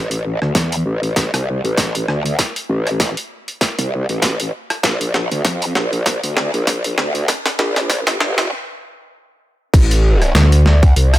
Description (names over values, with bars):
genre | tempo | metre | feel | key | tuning
glitch hop | 98 BPM | 4/4 | swing 56% on 16ths | unclear | A4 = 440 Hz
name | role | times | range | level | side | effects
growl bass | bass | 0.0-11.2 s | G1 to F2 | -16 LUFS | equal | chorus, tube saturation, high-pass filter
boom bap sampler-style drum kit | drums | 0.1-11.2 s | crash cymbal, hi-hat, rim click, snare drum | -19 LUFS | equal | high-pass filter on snare, high-pass filter on hats, high-pass filter on cymbals
electronic kick drum | drums | 0.6-10.9 s | none | -14 LUFS | equal | high-pass filter on kick
room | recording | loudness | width
little or no reverb | high-pass filter | -14 LUFS | side -15 dB against mid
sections
0.0-9.7 A section; 9.7-11.2 B section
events
build-up 0.0-9.7; drum fill 0.0-8.5; stop 8.5-9.7; drop 9.7-11.2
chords
none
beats
0.55 1.16 1.78 | 2.39 3.00 3.61 4.22 | 4.84 5.45 6.06 6.67 | 7.29 7.90 8.51 9.12 | 9.73 10.35 10.96